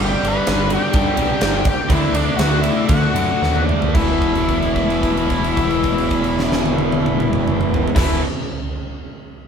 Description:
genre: classic rock.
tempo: 110-130 BPM.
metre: 4/4.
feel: straight.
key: unclear.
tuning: A4 = 440 Hz.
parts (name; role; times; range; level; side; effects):
octave-fuzz lead guitar; melody; 0.0-8.2 s; D4 to B4; -23 LUFS; left 4 dB; distortion.
distorted electric guitar; riff; 0.0-8.2 s; E2 to D4; -22 LUFS; left 7 dB; distortion.
tight distorted guitar; riff; 0.0-8.2 s; E2 to D4; -23 LUFS; right 6 dB; distortion.
growling picked electric bass; bass; 0.0-8.2 s; E1 to D3; -24 LUFS; right 1 dB; overdrive.
huge arena drum kit; drums; 0.2-8.1 s; crash cymbal, kick drum, ride cymbal, snare drum, toms; -20 LUFS; right 1 dB; none.
room: moderate stone room reverb, RT60 1.3 s.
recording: band playing live in one room, faint mains hum.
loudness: -15 LUFS.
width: side -7 dB against mid.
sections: 0.0-3.9 A section; 3.9-8.3 B section.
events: slowing down 0.0-3.9; drum fill 3.4-3.9; held note 3.9-8.0.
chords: 0.0 G; 1.9 D; 3.9 E5.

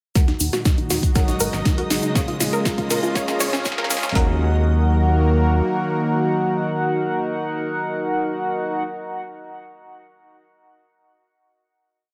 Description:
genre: progressive house.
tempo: 120 BPM.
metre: 4/4.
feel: straight.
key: Eb minor.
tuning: A4 = 440 Hz.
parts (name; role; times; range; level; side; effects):
lush unison pad; sustained chords; 0.5-8.8 s; Bb2 to Bb4; -27 LUFS; equal; chorus, sidechain pumping.
unison pluck; arpeggios; 0.2-8.8 s; Db4 to Db5; -29 LUFS; equal; sidechain pumping, diffuse ambient delay.
chorused polysynth; stabs; 0.2-8.8 s; Db4 to Gb5; -28 LUFS; equal; sidechain pumping, diffuse ambient delay.
fat analog bass; bass; 0.2-5.6 s; Ab1 to Eb2; -23 LUFS; equal; sidechain pumping.
deep house drum kit; drums; 0.2-4.3 s; kick drum, snare drum; -22 LUFS; equal; small room ambience.
dusty soul sampler-style drum kit; drums; 0.2-4.0 s; hi-hat, snare drum, tambourine; -38 LUFS; equal; none.
house drum kit; drums; 0.2-4.2 s; hi-hat, snare drum; -30 LUFS; equal; high-pass filter on snare, small room ambience, sidechain pumping on hats, high-pass filter on hats.
tube shaker; percussion; 0.2-4.1 s; none; -31 LUFS; equal; none.
backwards swelling texture; texture; 1.0-4.2 s; Eb5 to Eb6; -38 LUFS; equal; built-in reverb, analog chorus, sidechain pumping.
room: moderate plate reverb, RT60 2.1 s.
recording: dreamy mix soaked in reverb, high-pass filter.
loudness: -21 LUFS.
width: mono.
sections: 0.2-4.2 build; 4.2-8.2 final chord.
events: build-up 0.2-4.2; drum fill 0.2-4.2; filter sweep on synth pluck 0.2-4.2; filter sweep on analog polysynth 0.2-4.2; filter sweep 0.2-4.2.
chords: 0.2 Ebm; 1.2 Ab7sus4; 2.2 Bbm7; 3.2 Db; 4.2 Ebm.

